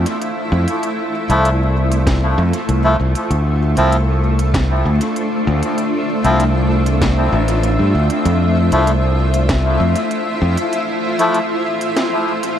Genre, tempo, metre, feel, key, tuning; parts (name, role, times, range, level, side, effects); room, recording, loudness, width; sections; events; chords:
ambient dub; 97 BPM; 4/4; straight; A4 = 440 Hz
granular cloud pad; sustained chords; 0.0-12.6 s; A3 to E5; -19 LUFS; equal; built-in reverb
modern bright fingered electric bass; bass; 0.0-10.6 s; A1 to G2; -15 LUFS; equal
organic electronic drum kit; drums; 0.1-12.6 s; hi-hat, snare drum; -26 LUFS; equal; overdrive, studio reverb, dub echo
melodica; stabs; 1.3-11.4 s; F3 to E4; -21 LUFS; left 1 dB; dub echo
electronic kick drum; drums; 2.1-9.6 s; -19 LUFS; equal; studio reverb
light reverb, digital ambience; vinyl crackle; -14 LUFS; side -10 dB against mid
0.0-12.6 A section
0.0 Fmaj7; 3.3 Dm9; 8.3 Fmaj7